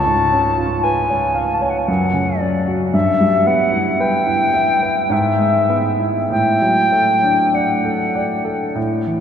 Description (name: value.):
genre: classical, romantic duo for flute and grand piano.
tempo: 48-58 BPM.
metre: 3/4.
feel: rubato.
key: D major.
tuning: A4 = 440 Hz.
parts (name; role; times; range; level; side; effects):
silver concert flute; melody; 0.0-8.8 s; D5 to A5; -17 LUFS; left 1 dB; none.
warm grand piano; accompaniment; 0.0-9.2 s; C#2 to E#5; -18 LUFS; right 1 dB; none.
room: wet cathedral reverb, RT60 6.3 s.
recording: dark, warm production.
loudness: -14 LUFS.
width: side -8 dB against mid.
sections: 0.0-9.2 A section.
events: none.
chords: 0.0 C#7; 1.9 F#5; 2.9 Em/G; 5.1 E/G#; 6.3 D/A.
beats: 0.84 1.88 | 2.94 4.00 5.11 | 6.31 7.54 8.77.